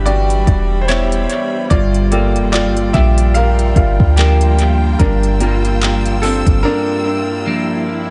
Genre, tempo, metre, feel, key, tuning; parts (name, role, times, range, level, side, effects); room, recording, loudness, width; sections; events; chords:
contemporary R&B; 73 BPM; 4/4; swing 58% on 16ths; A4 = 440 Hz
clear grand piano; accompaniment; 0.0-8.1 s; G3 to F5; -20 LUFS; equal; tape echo
warm studio string section; sustained chords; 0.0-8.1 s; G3 to E6; -28 LUFS; equal; sidechain pumping
clean electric guitar; arpeggios; 0.0-8.1 s; G2 to G4; -24 LUFS; equal; lush chorus, tape echo
clean 808-style bass; bass; 0.0-6.6 s; E1 to D2; -17 LUFS; equal
worn celesta; texture; 0.0-7.5 s; F5 to G5; -35 LUFS; equal
smooth R&B drum kit; drums; 0.1-6.6 s; handclaps, hi-hat, kick drum; -19 LUFS; equal; overdrive, tape echo
swell; sound effects; 7.1-8.1 s; -32 LUFS; equal
light reverb; echo-heavy mix, nothing above 10.5 kHz; -14 LUFS; mono
0.0-8.1 A section
grand piano solo 0.0-8.1; break 6.6-8.1; swell 7.1-8.1
0.0 Em7; 1.7 Gm7